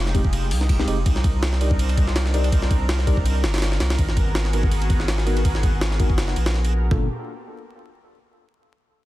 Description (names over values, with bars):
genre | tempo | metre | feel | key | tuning
drum and bass, jungle | 164 BPM | 4/4 | swing 55% on 16ths | G phrygian | A4 = 439 Hz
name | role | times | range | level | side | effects
lush unison pad | sustained chords | 0.0-7.1 s | Ab3 to Bb4 | -31 LUFS | right 1 dB | chorus, vintage 12-bit sampler grit
saturated sub bass | bass | 0.0-7.1 s | F1 to C2 | -22 LUFS | equal | none
mellow tine electric piano | stabs | 0.1-7.1 s | Ab3 to D5 | -31 LUFS | left 2 dB | medium stereo tremolo, dub echo
jungle sampler-style drum kit | drums | 0.1-7.0 s | hi-hat, kick drum, ride cymbal, snare drum, toms | -22 LUFS | equal | none
room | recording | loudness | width
digital ambience | dense, heavily limited modern master, vinyl crackle | -18 LUFS | side -16 dB against mid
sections
0.0-6.9 A section; 6.9-8.4 B section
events
drop 0.0-6.9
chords
0.0 Fm9; 1.1 Cm9; 4.0 Abm9; 6.9 Gm9